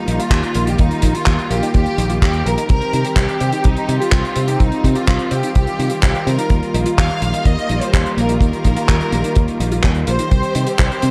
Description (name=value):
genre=italo disco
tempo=126 BPM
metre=4/4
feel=straight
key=unclear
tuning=A4 = 442 Hz
part: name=rich studio violin section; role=melody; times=0.0-11.1 s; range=Eb4 to F5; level=-25 LUFS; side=equal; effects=tape echo
part: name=warm studio string section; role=sustained chords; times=0.0-11.1 s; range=Eb3 to G4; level=-25 LUFS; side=equal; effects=none
part: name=analog pluck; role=arpeggios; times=0.1-11.1 s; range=Bb3 to C5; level=-30 LUFS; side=equal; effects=chorus, phaser, delay
part: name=fingered electric bass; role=bass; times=0.1-11.1 s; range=Bb1 to C3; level=-22 LUFS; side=equal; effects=none
part: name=damped 70s drum kit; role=drums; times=0.1-11.1 s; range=handclaps, hi-hat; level=-26 LUFS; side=equal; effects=none
part: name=kick drum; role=drums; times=0.3-10.9 s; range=none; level=-17 LUFS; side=equal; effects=none
room=light reverb, small room reverb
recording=dark, warm production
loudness=-17 LUFS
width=mono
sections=0.0-11.1 A section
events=none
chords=0.0 Ebadd9; 2.7 Cm; 6.5 Ebadd9; 10.3 Cm